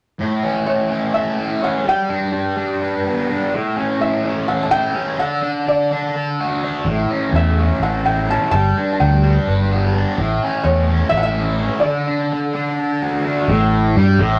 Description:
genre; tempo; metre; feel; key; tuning
rock; 252 BPM (eighths); 7/8; straight; A mixolydian; A4 = 435 Hz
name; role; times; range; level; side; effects
fuzz guitar; riff; 0.2-14.4 s; A2 to B4; -21 LUFS; equal; distortion, phaser
felt-muted upright piano; melody; 0.7-13.0 s; C#5 to A5; -23 LUFS; equal; none
picked electric bass; bass; 6.8-14.4 s; G1 to G2; -19 LUFS; equal; none
room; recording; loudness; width
moderate studio reverb, RT60 0.5 s; rough rehearsal-room recording, tube saturation; -18 LUFS; mono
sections
0.2-13.5 A section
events
break 11.8-13.5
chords
0.2 A; 1.9 G; 3.5 A; 5.2 D; 6.9 A; 8.5 G; 10.2 A; 11.8 D; 13.5 A5

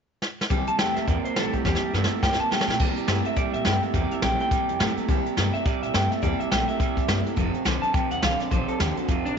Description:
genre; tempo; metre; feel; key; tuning
rockabilly; 210 BPM; 4/4; swing 60% on 8ths; C mixolydian; A4 = 439 Hz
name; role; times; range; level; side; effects
jazz brush drum kit; drums; 0.2-9.3 s; crash cymbal, hi-hat, kick drum, snare drum; -26 LUFS; equal; none
picked steel-string acoustic guitar; accompaniment; 0.5-9.4 s; C3 to A4; -31 LUFS; left 14 dB; none
electric guitar through a small old amp; riff; 0.5-9.4 s; F2 to Bb3; -29 LUFS; right 15 dB; spring reverb
upright bass; bass; 0.5-9.4 s; F1 to C3; -29 LUFS; equal; none
electric guitar through a small old amp; melody; 0.7-9.4 s; D4 to A5; -28 LUFS; equal; spring reverb, tape echo
room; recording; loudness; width
light reverb, studio reverb; 1960s-style stereo with parts hard left and right, nothing above 7.6 kHz; -22 LUFS; side -6 dB against mid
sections
0.5-2.8 A section; 2.8-9.4 B section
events
drum fill 0.2, 1.7-2.8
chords
0.0 N.C.; 0.5 C7; 7.4 F7

